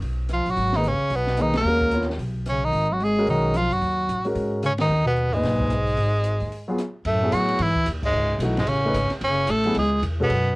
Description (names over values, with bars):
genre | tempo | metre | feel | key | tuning
modal jazz | 222 BPM | 4/4 | swing 60% on 8ths | G# dorian, F# dorian from 7.1 s | A4 = 440 Hz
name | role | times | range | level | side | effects
upright bass | bass | 0.0-10.6 s | F#1 to A2 | -27 LUFS | equal | none
open jazz drum kit | drums | 0.0-10.4 s | crash cymbal, hi-hat, kick drum, ride cymbal, rim click, snare drum | -34 LUFS | equal | cassette tape
edgy tenor saxophone | melody | 0.3-10.6 s | G#3 to A#4 | -23 LUFS | right 1 dB | cassette tape
mellow bass clarinet | second line | 0.3-10.5 s | G#2 to A#3 | -26 LUFS | equal | cassette tape
warm concert grand piano | accompaniment | 0.8-10.3 s | A#2 to C#5 | -26 LUFS | left 1 dB | cassette tape
room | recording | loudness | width
light reverb | home recording on cassette | -20 LUFS | side -24 dB against mid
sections
0.0-7.1 A section; 7.1-10.6 B section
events
band accent 1.5, 4.8, 8.0; break 6.5-7.1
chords
0.0 G#m9; 7.1 F#m9